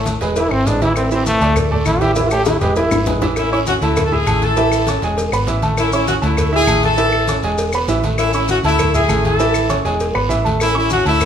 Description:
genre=latin, salsa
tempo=199 BPM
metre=4/4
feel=straight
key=A major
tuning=A4 = 440 Hz
part: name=bright trombone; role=melody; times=0.0-3.1 s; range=A3 to G4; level=-18 LUFS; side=equal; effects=none
part: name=bright baby grand piano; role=accompaniment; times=0.0-11.3 s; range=E3 to E6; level=-20 LUFS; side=right 4 dB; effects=none
part: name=hollow-body short-scale fingered electric bass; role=bass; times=0.0-11.3 s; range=E1 to D2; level=-20 LUFS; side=left 1 dB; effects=none
part: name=congas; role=percussion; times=0.1-11.3 s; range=none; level=-26 LUFS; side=left 1 dB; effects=none
part: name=cowbell and bongos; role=percussion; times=0.1-11.3 s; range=none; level=-24 LUFS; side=left 2 dB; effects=none
part: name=guiro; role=percussion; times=0.1-11.3 s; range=none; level=-33 LUFS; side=right 2 dB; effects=none
part: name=maracas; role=percussion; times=0.1-11.3 s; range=none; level=-32 LUFS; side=left 4 dB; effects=none
part: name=claves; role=percussion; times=0.5-11.3 s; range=none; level=-32 LUFS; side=left 4 dB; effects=none
part: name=brilliant horn section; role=melody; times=3.4-11.3 s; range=A3 to A4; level=-17 LUFS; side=left 2 dB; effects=none
room=wet large studio reverb, RT60 1.3 s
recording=minimal, uncompressed stereo recording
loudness=-14 LUFS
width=side -8 dB against mid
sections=0.0-3.4 A section; 3.4-11.3 B section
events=trombone solo 0.0-3.4; drum fill 2.2-3.4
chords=0.4 E; 1.0 A5; 2.2 A; 2.8 E; 3.4 A; 4.0 Dsus2; 4.6 A; 5.2 E; 5.8 A; 6.4 Dsus2; 7.0 A; 7.6 E; 8.2 A; 8.8 Dsus2; 9.4 A; 10.0 E; 10.6 A

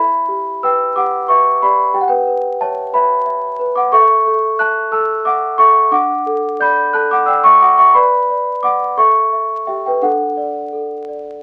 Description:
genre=classical, lullaby for celesta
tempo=59 BPM (dotted quarters)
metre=6/8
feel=uneven beats, rubato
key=D major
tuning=A4 = 440 Hz
part: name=celesta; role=solo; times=0.0-11.4 s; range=D4 to G6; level=-14 LUFS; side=equal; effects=none
room=moderate studio reverb, RT60 0.6 s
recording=very old 78 rpm record, vinyl crackle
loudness=-14 LUFS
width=mono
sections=0.0-11.4 A section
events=none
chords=0.0 Em; 1.9 Em/G; 3.9 A; 5.9 D; 7.9 Bm; 9.0 A7; 10.0 D

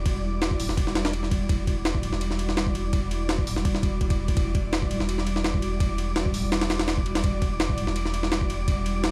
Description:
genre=drum and bass, jungle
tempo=167 BPM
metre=4/4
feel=straight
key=E minor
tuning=A4 = 440 Hz
part: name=saturated sub bass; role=bass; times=0.0-9.1 s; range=D1 to E1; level=-32 LUFS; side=equal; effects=none
part: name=wind-like tuned noise texture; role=texture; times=0.0-9.1 s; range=D6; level=-40 LUFS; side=equal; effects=built-in reverb
part: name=jungle sampler-style drum kit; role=drums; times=0.1-9.1 s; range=hi-hat, kick drum, ride cymbal, snare drum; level=-28 LUFS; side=equal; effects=overdrive, studio reverb
room=little or no reverb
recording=vinyl crackle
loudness=-26 LUFS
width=mono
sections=0.0-9.1 A section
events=none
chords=0.0 Em9

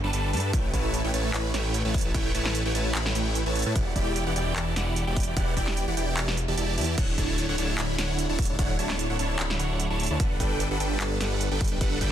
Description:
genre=future bass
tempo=149 BPM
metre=4/4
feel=swing 54% on 16ths, half-time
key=E dorian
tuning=A4 = 440 Hz
part: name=supersaw chords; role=riff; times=0.0-12.1 s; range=D3 to B5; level=-28 LUFS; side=right 1 dB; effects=phaser, cassette tape, sidechain pumping, digital delay
part: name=wide detuned saw bass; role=bass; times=0.0-12.1 s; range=D1 to A2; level=-29 LUFS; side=equal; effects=chorus, sidechain pumping
part: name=big-room dance drum kit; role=drums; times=0.1-12.1 s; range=crash cymbal, handclaps, hi-hat, snare drum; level=-32 LUFS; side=right 1 dB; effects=none
part: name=electronic kick drum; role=drums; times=0.5-12.1 s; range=none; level=-27 LUFS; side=equal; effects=none
room=little or no reverb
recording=dense, heavily limited modern master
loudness=-24 LUFS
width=side -10 dB against mid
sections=0.0-12.1 A section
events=none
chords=0.0 Gadd9; 0.5 A7; 3.8 Em9; 7.0 Dmaj9; 10.2 Gmaj9

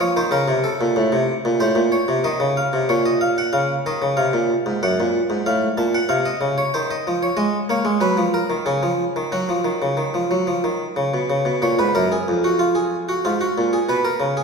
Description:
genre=classical, baroque-style two-part invention for harpsichord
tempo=93 BPM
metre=3/4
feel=straight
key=F# major from 7.4 s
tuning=A4 = 441 Hz
part: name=harpsichord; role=solo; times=0.0-14.4 s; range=E#2 to A5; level=-18 LUFS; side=equal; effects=none
room=wet recital hall reverb, RT60 1.9 s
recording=heard from further back in the room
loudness=-18 LUFS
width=side -5 dB against mid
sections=0.0-3.5 A section; 3.5-11.3 B section; 11.3-14.4 A section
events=none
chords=0.0 Bbm; 1.0 Am; 1.6 F7/A; 2.9 Bbm; 3.5 Bbm/Db; 4.8 Gbadd9; 5.5 F/A; 6.7 F5/Eb; 7.4 G#m7; 8.7 C#; 9.3 F#5; 11.3 F#; 12.6 Fm; 13.2 C#7/G#

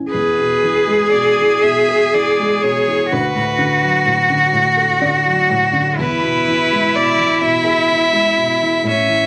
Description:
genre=celtic folk, Celtic slow air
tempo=41 BPM (dotted quarters)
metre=6/8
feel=uneven beats, rubato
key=E mixolydian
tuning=A4 = 440 Hz
part: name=felt-muted upright piano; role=accompaniment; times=0.0-9.3 s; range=D2 to F#5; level=-24 LUFS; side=equal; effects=none
part: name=rich fiddle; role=melody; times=0.1-9.3 s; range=B4 to E5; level=-20 LUFS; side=equal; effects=none
part: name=clear cello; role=second line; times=0.1-9.3 s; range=C#4 to G#4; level=-17 LUFS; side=equal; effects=none
room=moderate studio reverb, RT60 0.7 s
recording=none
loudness=-15 LUFS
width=mono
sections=0.0-9.3 A section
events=felt piano fill 4.5-6.0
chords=0.1 E; 3.1 D; 6.0 E

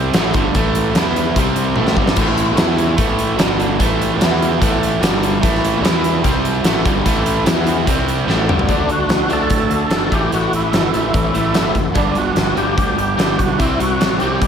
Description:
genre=classic rock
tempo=147 BPM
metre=4/4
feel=straight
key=unclear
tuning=A4 = 441 Hz
part: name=cranked stack guitar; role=riff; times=0.0-14.5 s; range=G2 to E4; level=-20 LUFS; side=right 8 dB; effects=overdrive, slapback echo
part: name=crunchy overdriven guitar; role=riff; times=0.0-14.5 s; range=G2 to E4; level=-22 LUFS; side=left 9 dB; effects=none
part: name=fuzz fingered electric bass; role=bass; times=0.0-14.5 s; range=F#1 to A2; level=-22 LUFS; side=left 1 dB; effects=overdrive
part: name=huge arena drum kit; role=drums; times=0.1-14.5 s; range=crash cymbal, hi-hat, kick drum, snare drum, toms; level=-18 LUFS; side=equal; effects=none
part: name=overdriven tonewheel organ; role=melody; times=8.7-14.5 s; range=D4 to A4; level=-20 LUFS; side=left 1 dB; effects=chorus vibrato, slow rotary speaker, slapback echo
room=moderate lush hall reverb, RT60 1.8 s, small room reverb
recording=none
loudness=-14 LUFS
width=side -8 dB against mid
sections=0.0-8.7 A section; 8.7-14.5 B section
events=drum fill 1.8-2.2, 8.3-8.7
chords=0.1 A5; 0.9 E5; 1.4 C5; 1.8 A5; 2.6 E5; 3.0 A5; 3.4 G5; 3.8 A5; 4.2 E5; 4.6 A5; 5.0 G5; 5.4 A5; 5.8 E5; 6.2 C5; 6.6 A5; 7.5 E5; 7.9 C5; 8.3 A5; 8.7 D; 10.1 A5; 12.0 G5; 13.6 C5

